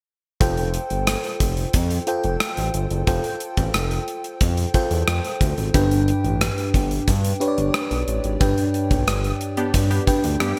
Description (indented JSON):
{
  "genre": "1980s-style pop",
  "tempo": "90 BPM",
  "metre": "4/4",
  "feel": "straight",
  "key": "unclear",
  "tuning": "A4 = 439 Hz",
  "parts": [
    { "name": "FM electric piano with soft pad layer", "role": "accompaniment", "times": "0.4-10.6 s", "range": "G2 to G5", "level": "-26 LUFS", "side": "equal", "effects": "chorus" },
    { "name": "smooth gliding synth bass", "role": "bass", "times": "0.4-10.5 s", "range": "F1 to G2", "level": "-26 LUFS", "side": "equal", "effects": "none" },
    { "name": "gated 80s drum kit", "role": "drums", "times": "0.4-10.6 s", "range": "hi-hat, kick drum, rim click", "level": "-25 LUFS", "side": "equal", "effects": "gated reverb" },
    { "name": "funky polysynth comp", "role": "stabs", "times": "9.6-10.6 s", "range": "B3 to G4", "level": "-28 LUFS", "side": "equal", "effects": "chorus" }
  ],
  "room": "moderate lush hall reverb, RT60 1.7 s, small room ambience",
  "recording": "bright 1980s-style digital production",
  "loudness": "-21 LUFS",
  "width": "mono",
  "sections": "0.4-10.6 A section",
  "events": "band accent 8.4-10.6",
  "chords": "0.4 Fadd9; 5.7 G"
}